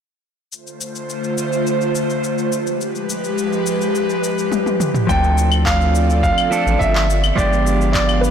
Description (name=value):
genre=sunset chillout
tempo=105 BPM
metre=4/4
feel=straight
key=D dorian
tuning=A4 = 440 Hz
part: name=airy breathy pad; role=sustained chords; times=0.8-8.3 s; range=D3 to F5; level=-20 LUFS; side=equal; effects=chorus
part: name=deep house drum kit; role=drums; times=0.5-8.3 s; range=cabasa, claves, handclaps, toms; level=-24 LUFS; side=left 2 dB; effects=small room ambience
part: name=warm concert grand piano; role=melody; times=5.1-8.3 s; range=B4 to G5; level=-19 LUFS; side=right 2 dB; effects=tape echo
part: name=clean electric guitar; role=accompaniment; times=5.1-8.3 s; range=F3 to A4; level=-21 LUFS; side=moving between left 5 dB and right 6 dB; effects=auto-pan, vintage 12-bit sampler grit, low-pass filter, tape echo
part: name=round analog bass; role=bass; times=5.1-8.3 s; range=G1 to D2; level=-18 LUFS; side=equal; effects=transformer saturation
part: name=electronic kick drum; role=drums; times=5.1-8.1 s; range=none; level=-23 LUFS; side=equal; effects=overdrive, small room ambience
room=moderate lush hall reverb, RT60 2.3 s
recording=blown-out, overdriven recording, overdrive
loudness=-15 LUFS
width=side -8 dB against mid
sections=0.5-5.1 A section; 5.1-8.3 B section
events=drum fill 4.5-5.1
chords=0.5 Dm7; 2.5 G7b9; 5.1 Dm7; 7.1 G7b9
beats=| 0.52 1.09 1.66 2.23 | 2.81 3.38 3.95 4.52 | 5.09 5.66 6.24 6.81 | 7.38 7.95